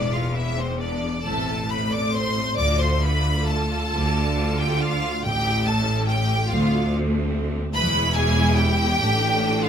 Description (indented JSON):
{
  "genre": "classical, slow romantic movement for string orchestra",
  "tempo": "43-49 BPM (dotted quarters)",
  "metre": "6/8",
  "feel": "rubato",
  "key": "A minor",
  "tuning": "A4 = 440 Hz",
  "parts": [
    { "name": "rich studio violin section", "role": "melody", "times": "0.0-9.7 s", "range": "C5 to D6", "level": "-26 LUFS", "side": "left 1 dB", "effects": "none" },
    { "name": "dark symphonic violin section", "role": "second line", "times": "0.0-9.7 s", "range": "C4 to D5", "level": "-28 LUFS", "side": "left 1 dB", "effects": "none" },
    { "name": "warm symphonic viola section", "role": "accompaniment", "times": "0.0-9.7 s", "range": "G#3 to F4", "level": "-28 LUFS", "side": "equal", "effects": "none" },
    { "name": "clear chamber double bass section", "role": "bass", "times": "0.0-9.7 s", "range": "E1 to D2", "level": "-24 LUFS", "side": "equal", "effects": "none" },
    { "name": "rich studio cello section", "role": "bass", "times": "0.0-9.7 s", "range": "D2 to D3", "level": "-27 LUFS", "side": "equal", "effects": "none" }
  ],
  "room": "light reverb",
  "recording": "minimal, uncompressed stereo recording",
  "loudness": "-20 LUFS",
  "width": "side -8 dB against mid",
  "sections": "0.0-9.7 A section",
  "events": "none",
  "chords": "0.0 E; 1.2 Am; 2.6 Dm; 5.2 A; 6.5 D5; 7.7 E; 9.0 F69/A (rootless)",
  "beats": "1.24 | 2.57 3.92 | 5.24 6.49 | 7.73 9.00"
}